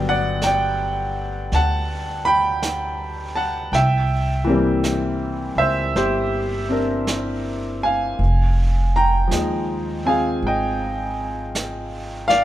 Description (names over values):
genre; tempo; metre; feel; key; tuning
jazz ballad; 54 BPM; 4/4; swing 66% on 8ths; unclear; A4 = 439 Hz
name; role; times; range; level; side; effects
clear baby grand piano; accompaniment; 0.0-12.4 s; D3 to B5; -20 LUFS; equal; none
upright bass; bass; 0.0-12.4 s; F1 to Eb2; -24 LUFS; equal; none
vintage brush drum kit; drums; 0.4-12.4 s; brushed snare drum, hi-hat, snare drum; -32 LUFS; right 3 dB; none
room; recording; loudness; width
little or no reverb; minimal, uncompressed stereo recording; -19 LUFS; side -13 dB against mid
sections
0.0-12.4 A section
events
none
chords
0.0 Gmaj7; 3.7 C7; 8.2 Fm9